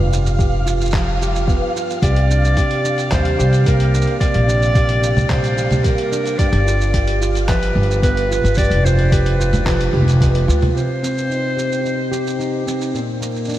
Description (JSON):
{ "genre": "folktronica", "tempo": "110 BPM", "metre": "4/4", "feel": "straight", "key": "unclear", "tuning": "A4 = 440 Hz", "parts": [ { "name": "fingerpicked plugged-in steel-string acoustic guitar", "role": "arpeggios", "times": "0.0-13.6 s", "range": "G2 to G4", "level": "-21 LUFS", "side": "right 1 dB", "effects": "low-pass filter, tape echo" }, { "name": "upright bass", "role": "bass", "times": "0.0-10.7 s", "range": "F1 to Eb2", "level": "-17 LUFS", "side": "equal", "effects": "none" }, { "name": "flickering grainy texture", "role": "texture", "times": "0.0-10.8 s", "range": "F5", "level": "-30 LUFS", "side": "equal", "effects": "built-in reverb, ensemble chorus" }, { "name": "lo-fi sampler-style drum kit", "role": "drums", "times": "0.1-13.6 s", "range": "congas, handclaps, hi-hat, shaker", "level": "-25 LUFS", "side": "right 1 dB", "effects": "none" }, { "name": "electronic kick drum", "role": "drums", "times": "0.4-10.3 s", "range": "none", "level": "-18 LUFS", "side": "equal", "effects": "none" }, { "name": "clear clarinet", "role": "melody", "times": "2.0-12.6 s", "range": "Bb4 to D5", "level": "-22 LUFS", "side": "equal", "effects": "tape echo" } ], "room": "moderate huge ambient reverb, RT60 4.7 s", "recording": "dreamy mix soaked in reverb, vinyl crackle", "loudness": "-14 LUFS", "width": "side -13 dB against mid", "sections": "0.0-10.8 A section; 10.8-13.6 B section", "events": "none", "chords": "0.0 G7; 2.0 C7sus2; 6.4 G7; 10.8 Cm; 12.9 Bb" }